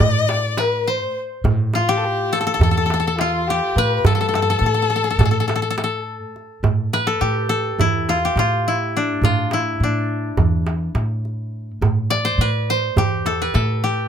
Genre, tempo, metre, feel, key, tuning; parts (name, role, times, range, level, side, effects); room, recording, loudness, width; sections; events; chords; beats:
Turkish makam ensemble; 208 BPM (eighths); 9/8; straight; A makam ussak; A4 = 440 Hz
koto; melody; 0.0-14.1 s; D4 to D5; -21 LUFS; left 2 dB
dark violin; second line; 0.0-6.1 s; F4 to D5; -22 LUFS; left 6 dB
upright bass; bass; 0.0-14.1 s; E2 to A2; -22 LUFS; equal
darbuka; percussion; 0.0-13.9 s; -21 LUFS; right 5 dB
little or no reverb; close, detailed microphones; -17 LUFS; side -8 dB against mid
0.0-6.6 A section; 6.6-14.1 B section
0.01 0.30 0.58 0.87 1.16 | 1.45 1.74 2.02 2.31 2.60 2.89 3.17 3.46 3.75 | 4.04 4.33 4.61 4.90 5.19 5.48 5.77 6.05 6.34 | 6.63 6.92 7.21 7.50 7.78 8.07 8.36 8.65 8.94 | 9.23 9.51 9.80 10.09 10.38 10.67 10.96 11.25 11.54 | 11.82 12.11 12.40 12.69 12.98 13.27 13.55 13.84